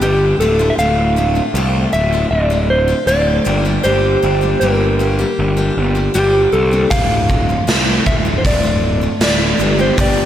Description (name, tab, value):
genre	quiet-loud alternative rock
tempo	78 BPM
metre	4/4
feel	straight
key	D minor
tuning	A4 = 440 Hz
part	mellow electric guitar	melody	0.0-10.3 s	G4 to F5	-17 LUFS	equal	spring reverb, slapback echo, tape echo
part	picked steel-string acoustic guitar	arpeggios	0.0-10.3 s	D2 to G4	-19 LUFS	left 2 dB	slapback echo
part	fuzz picked electric bass	bass	0.0-10.3 s	D1 to C2	-17 LUFS	equal	overdrive
part	raw garage drum kit	drums	6.9-10.2 s	hi-hat, kick drum, snare drum	-16 LUFS	right 1 dB	none
room	moderate lush hall reverb, RT60 2.6 s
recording	big arena sound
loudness	-12 LUFS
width	side -11 dB against mid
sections	0.0-10.3 A section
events	none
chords	0.4 Dm; 3.5 Gm; 6.9 Dm; 9.6 G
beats	0.01 | 0.78 1.54 2.31 3.08 | 3.85 4.61 5.38 6.15 | 6.92 7.68 8.45 9.22 | 9.98